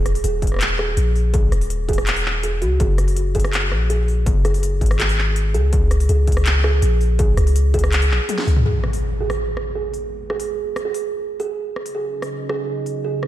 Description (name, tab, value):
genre	half-time drum and bass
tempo	164 BPM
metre	4/4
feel	half-time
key	G# minor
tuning	A4 = 441 Hz
part	long sustained 808-style bass	bass	0.0-8.6 s	D#1 to C#2	-18 LUFS	left 1 dB	none
part	drum and bass drum kit	drums	0.1-13.3 s	handclaps, hi-hat, rim click, snare drum, toms	-25 LUFS	equal	studio reverb
part	kalimba	arpeggios	0.2-13.2 s	F#4 to G#4	-25 LUFS	right 4 dB	low-pass filter, diffuse ambient delay
part	electronic kick drum	drums	0.4-7.8 s	none	-20 LUFS	equal	distortion, studio reverb
part	dark analog pad	sustained chords	8.7-13.3 s	C#4 to D#5	-32 LUFS	right 1 dB	chorus, vintage 12-bit sampler grit, sidechain pumping
part	impact	sound effects	8.7-10.1 s	none	-25 LUFS	left 1 dB	none
room	light reverb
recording	none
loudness	-17 LUFS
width	side -13 dB against mid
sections	0.0-8.7 A section; 8.7-13.3 B section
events	drum fill 8.3-8.7; impact 8.7-10.1; filter sweep on analog synth pad 8.7-13.3; filter sweep on kalimba 8.7-13.3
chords	0.0 D#5; 2.8 F#add9; 5.7 C#5; 8.7 G#madd9; 11.6 D#m7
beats	0.24 0.61 0.97 | 1.34 1.71 2.07 2.44 | 2.80 3.17 3.53 3.90 | 4.27 4.63 5.00 5.36 | 5.73 6.09 6.46 6.83 | 7.19 7.56 7.92 8.29 | 8.66 9.02 9.39 9.75 | 10.12 10.48 10.85 11.22 | 11.58 11.95 12.31 12.68 | 13.05